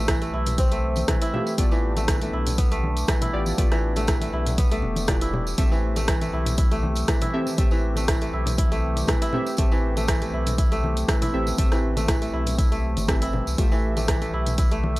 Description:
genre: afro house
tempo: 120 BPM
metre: 4/4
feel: swing 54% on 16ths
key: A minor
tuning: A4 = 440 Hz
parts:
  - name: warm analog pad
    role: sustained chords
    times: 0.0-15.0 s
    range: E3 to E5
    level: -35 LUFS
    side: left 1 dB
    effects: chorus, sidechain pumping
  - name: kora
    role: arpeggios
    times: 0.0-15.0 s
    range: E3 to E4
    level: -28 LUFS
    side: equal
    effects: sidechain pumping, tape echo
  - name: deep mellow chord stab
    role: stabs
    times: 0.0-15.0 s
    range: A3 to E5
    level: -31 LUFS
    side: equal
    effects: chorus, sidechain pumping, tape echo
  - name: warm sub bass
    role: bass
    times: 0.0-15.0 s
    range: E1 to C2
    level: -27 LUFS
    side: equal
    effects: sidechain pumping
  - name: deep house drum kit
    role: drums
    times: 0.1-15.0 s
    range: hi-hat, rim click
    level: -29 LUFS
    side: equal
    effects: none
  - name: electronic kick drum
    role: drums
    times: 0.1-14.7 s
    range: none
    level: -23 LUFS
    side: equal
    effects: none
  - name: tambourine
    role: percussion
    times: 0.1-15.0 s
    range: none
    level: -38 LUFS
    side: right 3 dB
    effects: none
  - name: congas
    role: percussion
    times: 0.5-14.9 s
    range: none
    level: -32 LUFS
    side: left 1 dB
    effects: none
room: little or no reverb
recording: dry, gritty hardware recording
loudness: -20 LUFS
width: side -19 dB against mid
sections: 0.0-15.0 A section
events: none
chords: 0.0 Fmaj9/A; 1.6 G7/A; 5.6 Am7; 13.6 Fmaj9/A

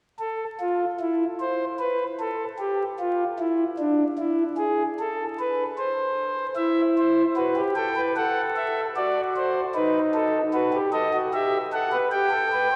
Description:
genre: classical, baroque-style 4-part fugue for pipe organ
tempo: 75 BPM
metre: 4/4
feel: straight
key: unclear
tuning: A4 = 443 Hz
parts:
  - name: pipe organ, principal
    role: solo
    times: 0.2-12.8 s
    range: D4 to G5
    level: -25 LUFS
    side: equal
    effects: none
room: wet cathedral reverb, RT60 4.6 s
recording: heard from further back in the room, vinyl crackle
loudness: -25 LUFS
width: mono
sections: 0.2-12.8 A section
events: none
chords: 0.2 N.C.; 6.6 Em; 8.2 F#m7b5/A; 9.7 B7/D#; 11.3 Em/G

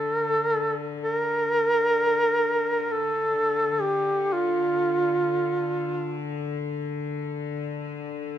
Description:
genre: caucasian folk, Caucasian lament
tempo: free time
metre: none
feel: none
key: D minor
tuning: A4 = 441 Hz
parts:
  - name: warm duduk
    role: melody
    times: 0.0-6.2 s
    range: F4 to Bb4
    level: -22 LUFS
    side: right 1 dB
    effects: none
  - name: clear chamber cello section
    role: drone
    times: 0.0-8.4 s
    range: D3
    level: -32 LUFS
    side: left 6 dB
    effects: none
room: moderate recital hall reverb, RT60 1.6 s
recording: minimal, uncompressed stereo recording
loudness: -23 LUFS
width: side -10 dB against mid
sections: 0.0-8.4 A section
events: none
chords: none

